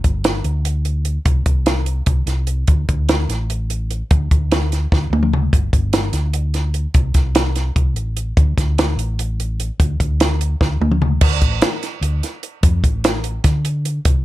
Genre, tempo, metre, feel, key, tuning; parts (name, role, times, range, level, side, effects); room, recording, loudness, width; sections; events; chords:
math rock and midwest emo; 296 BPM (eighths); 7/8; straight; A4 = 440 Hz
hollow-body short-scale fingered electric bass; bass; 0.0-14.2 s; G1 to D3; -19 LUFS; equal
compact cocktail drum kit; drums; 0.0-14.1 s; crash cymbal, hi-hat, kick drum, snare drum, toms; -17 LUFS; equal
little or no reverb; -16 LUFS; side -16 dB against mid
0.0-11.2 A section; 11.2-14.2 B section
drum fill 4.9-5.5, 10.6-11.2